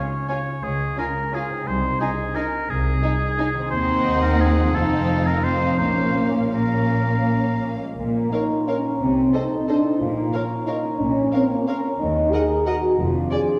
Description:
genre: classical, orchestral ballroom waltz.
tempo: 157-195 BPM.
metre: 3/4.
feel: rubato.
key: Bb minor from 3.7 s.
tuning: A4 = 439 Hz.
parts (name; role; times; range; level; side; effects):
clear oboe; second line; 0.0-7.8 s; Ab4 to Db5; -28 LUFS; equal; none.
concert harp; arpeggios; 0.0-13.6 s; Bb2 to Eb5; -32 LUFS; equal; none.
dark studio violin section; melody; 0.3-13.4 s; Eb5 to Ab5; -38 LUFS; equal; none.
warm symphonic violin section; second line; 0.3-13.4 s; Db4 to Eb5; -32 LUFS; equal; none.
warm symphonic viola section; accompaniment; 0.3-13.4 s; Bb3 to D5; -31 LUFS; equal; none.
rich symphonic cello section; bass; 0.6-13.3 s; C2 to C3; -29 LUFS; equal; none.
warm symphonic double bass section; bass; 0.6-13.2 s; F1 to Eb2; -30 LUFS; equal; none.
mellow French horn section; sustained chords; 7.8-13.6 s; Ab3 to Ab4; -24 LUFS; equal; none.
room: wet recital hall reverb, RT60 1.6 s.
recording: recorded in a church or concert hall.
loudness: -21 LUFS.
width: mono.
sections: 0.0-8.0 A section; 8.0-13.6 B section.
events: none.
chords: 0.0 Db; 1.7 Ab/C; 3.7 Cdim/Eb; 4.7 F7; 5.8 Bbm; 9.0 Adim/C; 10.0 Bbm; 12.0 Ebm; 13.0 Ddim/F.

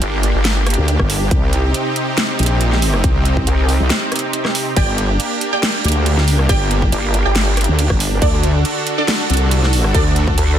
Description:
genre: heavy wobble dubstep.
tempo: 139 BPM.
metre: 4/4.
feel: half-time.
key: G harmonic minor.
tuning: A4 = 443 Hz.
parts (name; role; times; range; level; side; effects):
supersaw pad; sustained chords; 0.0-10.6 s; C3 to A4; -21 LUFS; right 1 dB; sidechain pumping.
vowel-sweep wobble bass; bass; 0.0-0.8, 3.5-3.8, 6.9-7.7, 10.4-10.6 s; G1 to D2; -16 LUFS; equal; chorus, overdrive.
dubstep drum kit; drums; 0.0-10.5 s; crash cymbal, hi-hat, rim click, snare drum; -21 LUFS; right 1 dB; small room ambience.
wobble bass; bass; 0.8-10.4 s; G1 to D2; -16 LUFS; equal; chorus, overdrive.
electronic kick drum; drums; 1.0-10.4 s; none; -19 LUFS; equal; small room ambience.
orchestra-hit-like synth stab; stabs; 4.8-10.0 s; D4 to G5; -23 LUFS; right 2 dB; built-in reverb, phaser, digital delay.
room: little or no reverb.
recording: dense, heavily limited modern master.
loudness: -14 LUFS.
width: side -10 dB against mid.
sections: 0.0-10.6 A section.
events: break 3.9-4.8.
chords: 0.0 Gm; 1.3 Cm; 4.8 Gm; 8.2 D.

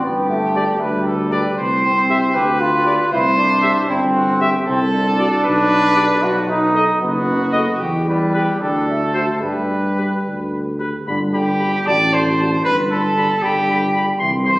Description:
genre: classical, brass quintet.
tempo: 77 BPM (dotted quarters).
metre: 6/8.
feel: rubato.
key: G major.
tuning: A4 = 439 Hz.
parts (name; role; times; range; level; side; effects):
warm trumpet; second line; 0.0-14.6 s; E4 to D5; -19 LUFS; right 1 dB; none.
clear trombone; accompaniment; 0.0-14.6 s; D3 to G4; -20 LUFS; equal; none.
dark bass trombone; bass; 0.0-14.6 s; F#1 to G2; -21 LUFS; equal; none.
clear cornet; melody; 0.6-14.6 s; B4 to C6; -24 LUFS; left 1 dB; none.
mellow French horn; accompaniment; 0.6-14.6 s; F#4 to A4; -31 LUFS; left 1 dB; none.
room: wet recital hall reverb, RT60 1.8 s.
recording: recorded on a phone in the room, club reverb.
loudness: -15 LUFS.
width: side -20 dB against mid.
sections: 0.0-11.1 A section; 11.1-14.6 A section.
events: none.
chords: 0.0 G5; 1.6 C5; 2.4 G7/D; 3.1 C; 4.7 D7(no3)/C; 5.4 G/B (rootless); 6.2 B; 7.8 Em; 8.6 D5; 9.4 G; 11.9 D7/A; 12.7 G.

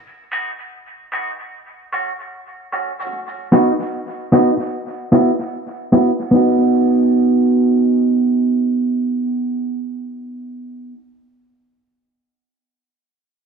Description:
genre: reggae.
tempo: 75 BPM.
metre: 4/4.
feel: swing 61% on 16ths.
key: unclear.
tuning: A4 = 440 Hz.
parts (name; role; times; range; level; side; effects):
mellow electric guitar; accompaniment; 0.3-11.0 s; A3 to F#4; -15 LUFS; right 2 dB; spring reverb, high-pass filter, low-pass filter, dub echo.
room: small room ambience.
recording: dry, close 1970s-style studio recording.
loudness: -15 LUFS.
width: side -6 dB against mid.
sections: 0.0-6.3 A section; 6.3-9.5 B section.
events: filter sweep on clean electric guitar 0.0-6.3.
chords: 0.0 B; 1.5 A6; 3.1 B; 4.7 F#7sus4; 6.3 B.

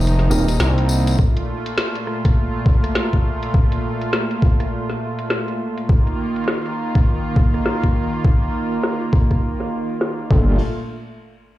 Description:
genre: glitch hop.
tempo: 102 BPM.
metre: 4/4.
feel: swing 61% on 16ths.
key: unclear.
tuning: A4 = 440 Hz.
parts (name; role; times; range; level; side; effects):
warm analog pad; sustained chords; 0.0-10.6 s; Bb2 to F4; -23 LUFS; right 1 dB; chorus, tremolo, sidechain pumping.
gritty driven synth bass; bass; 0.0-1.2, 10.3-10.6 s; Eb1 to C2; -16 LUFS; equal; tube saturation.
tambourine; percussion; 0.0-1.2 s; none; -32 LUFS; left 5 dB; none.
drum and bass drum kit; drums; 0.1-10.4 s; crash cymbal, hi-hat, rim click, snare drum; -25 LUFS; left 1 dB; low-pass filter on hats, low-pass filter on snare, low-pass filter on cymbals, low-pass filter on room.
mellow tine electric piano; stabs; 0.3-0.4, 10.3-10.5 s; Bb3 to Bb4; -26 LUFS; equal; sidechain pumping, ping-pong delay.
electronic kick drum; drums; 1.2-10.4 s; none; -16 LUFS; equal; overdrive.
room: light reverb.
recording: played on a big sound system in a bare room, large studio reverb, faint mains hum.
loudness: -17 LUFS.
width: side -15 dB against mid.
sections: 0.0-10.6 A section.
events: filter sweep on drum 0.0-10.6.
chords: 0.0 F7sus4; 1.2 Fadd11/Bb; 5.9 F7sus4; 10.3 Gm9; 10.6 N.C..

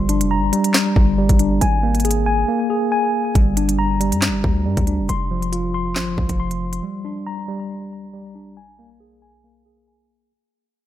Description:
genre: hip hop, drill.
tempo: 138 BPM.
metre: 4/4.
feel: half-time.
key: G phrygian.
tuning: A4 = 440 Hz.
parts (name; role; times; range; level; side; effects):
mellow tine electric piano; arpeggios; 0.0-10.3 s; F3 to C6; -20 LUFS; left 1 dB; medium stereo tremolo, low-pass filter, ping-pong delay.
hard-hitting 808-style bass; bass; 0.0-6.8 s; F1 to G2; -21 LUFS; equal; none.
drill drum kit; drums; 0.1-6.8 s; handclaps, hi-hat, kick drum, snare drum; -19 LUFS; equal; none.
room: little or no reverb.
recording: faint mains hum.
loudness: -17 LUFS.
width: side -12 dB against mid.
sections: 0.0-3.4 A section; 3.4-10.3 B section.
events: drums muted 2.5-3.4; fade-out 3.4-10.3; filter sweep on tine electric piano 3.4-10.3.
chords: 0.0 Gm; 1.6 Absus2; 3.4 Gm; 5.1 F5; 6.8 Gm; 8.6 Absus2.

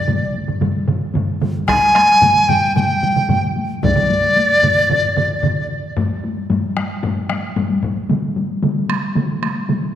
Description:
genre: japanese traditional, taiko drum ensemble.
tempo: 112 BPM.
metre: 4/4.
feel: straight.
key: unclear.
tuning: A4 = 441 Hz.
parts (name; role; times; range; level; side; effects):
bright large dizi; melody; 0.0-5.7 s; D5 to Ab5; -14 LUFS; equal; tape echo.
solo taiko drums; percussion; 0.1-9.8 s; none; -22 LUFS; right 5 dB; none.
taiko ensemble; percussion; 0.1-9.9 s; none; -22 LUFS; left 4 dB; none.
taiko ensemble; percussion; 0.1-8.0 s; none; -23 LUFS; left 3 dB; none.
taiko ensemble; percussion; 1.7-4.0 s; none; -25 LUFS; right 1 dB; none.
room: wet scoring stage reverb, RT60 1.6 s.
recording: none.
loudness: -14 LUFS.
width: side -10 dB against mid.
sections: 0.0-6.0 A section; 6.0-10.0 B section.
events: stop 4.9-6.0.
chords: none.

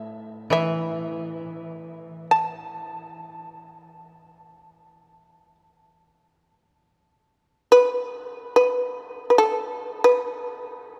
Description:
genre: japanese traditional, Japanese chamber music.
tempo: free time.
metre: none.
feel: none.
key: unclear.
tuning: A4 = 440 Hz.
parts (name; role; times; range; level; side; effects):
shamisen; melody; 0.0-11.0 s; A4 to A5; -22 LUFS; equal; none.
koto; accompaniment; 0.0-3.9 s; A2 to E3; -33 LUFS; equal; none.
room: wet cathedral reverb, RT60 6.3 s.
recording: none.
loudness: -22 LUFS.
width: mono.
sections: 0.0-11.0 A section.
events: slowing down 6.1-11.0.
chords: none.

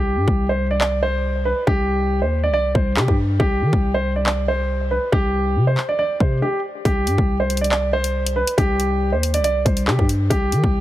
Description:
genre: hip hop, drill.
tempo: 139 BPM.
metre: 4/4.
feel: half-time.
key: C harmonic minor.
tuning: A4 = 442 Hz.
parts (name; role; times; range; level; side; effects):
dark concert grand piano; melody; 0.0-10.8 s; G4 to D5; -21 LUFS; right 1 dB; ping-pong delay.
growling 808-style bass; bass; 0.0-10.8 s; C2 to Eb3; -21 LUFS; equal; none.
drill drum kit; drums; 0.3-10.7 s; handclaps, hi-hat, kick drum; -21 LUFS; equal; none.
room: little or no reverb.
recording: heavily compressed radio sound, multiband compression.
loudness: -17 LUFS.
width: side -14 dB against mid.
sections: 0.0-10.8 A section.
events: break 0.0-6.9.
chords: 0.0 C5.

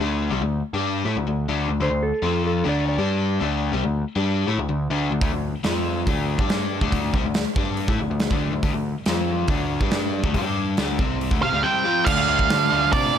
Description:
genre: classic rock.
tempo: 140 BPM.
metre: 4/4.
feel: straight.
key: D minor.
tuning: A4 = 437 Hz.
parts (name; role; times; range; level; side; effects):
crunchy overdriven guitar; riff; 0.0-13.2 s; C3 to G4; -24 LUFS; left 4 dB; none.
growling picked electric bass; bass; 0.0-13.2 s; C2 to C3; -26 LUFS; right 1 dB; overdrive.
clean lap steel guitar; second line; 1.8-3.7 s; A4 to D5; -26 LUFS; right 2 dB; none.
big rock drum kit; drums; 5.2-13.0 s; crash cymbal, hi-hat, kick drum, snare drum; -24 LUFS; right 1 dB; none.
octave-fuzz lead guitar; melody; 11.4-13.2 s; D5 to G5; -20 LUFS; right 4 dB; distortion.
overdriven electric guitar; riff; 12.1-13.2 s; D3 to F4; -25 LUFS; right 15 dB; none.
room: light reverb, small room ambience.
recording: none.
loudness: -20 LUFS.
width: side -9 dB against mid.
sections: 0.0-12.1 A section; 12.1-13.2 B section.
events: none.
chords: 0.0 D5; 2.2 F5; 2.7 D5; 3.0 G5; 3.4 D5; 5.7 F5; 6.1 D5; 6.4 G5; 6.8 D5; 9.1 F5; 9.5 D5; 9.8 G5; 10.3 D5; 10.4 G5; 10.8 Dm.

